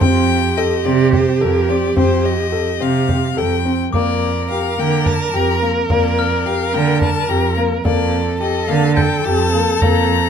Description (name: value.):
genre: contemporary instrumental, chamber music in an uneven meter.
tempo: 215 BPM (eighths).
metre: 7/8.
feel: straight.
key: unclear.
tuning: A4 = 440 Hz.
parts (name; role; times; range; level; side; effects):
clear violin; melody; 0.0-10.3 s; Bb4 to Bb5; -23 LUFS; left 10 dB; none.
dark viola; second line; 0.0-10.3 s; G4 to Bb4; -20 LUFS; right 2 dB; none.
warm baby grand piano; arpeggios; 0.0-10.2 s; Bb3 to A4; -21 LUFS; left 5 dB; none.
warm cello; bass; 0.0-10.3 s; F2 to D3; -18 LUFS; right 4 dB; none.
frame drum; percussion; 0.0-10.1 s; none; -20 LUFS; right 1 dB; none.
glockenspiel with brass mallets; texture; 0.0-0.9, 3.9-10.3 s; C6 to G6; -30 LUFS; left 6 dB; none.
room: light reverb.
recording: close, detailed microphones.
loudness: -14 LUFS.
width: side -7 dB against mid.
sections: 0.0-10.3 A section.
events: none.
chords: 0.0 F; 3.9 Gmadd9/F.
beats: | 0.01 0.29 0.57 0.85 1.13 1.41 1.69 | 1.96 2.24 2.52 2.81 3.09 3.37 3.66 | 3.94 4.22 4.50 4.79 5.07 5.35 5.63 | 5.91 6.18 6.46 6.74 7.02 7.30 7.57 | 7.85 8.13 8.41 8.69 8.97 9.25 9.53 | 9.81 10.10.